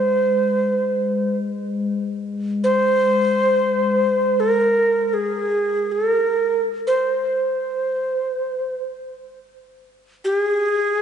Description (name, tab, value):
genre	world meditative, free-time meditation music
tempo	free time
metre	none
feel	none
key	unclear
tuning	A4 = 436 Hz
part	mellow Native American-style cedar flute	melody	0.0-11.0 s	Ab4 to C5	-18 LUFS	right 1 dB	tape echo
part	glass harmonica	texture	0.0-4.4 s	Ab3	-25 LUFS	left 4 dB	none
room	wet echo chamber reverb, RT60 2.2 s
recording	nothing above 10.4 kHz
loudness	-18 LUFS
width	side -8 dB against mid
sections	0.0-11.0 A section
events	none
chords	none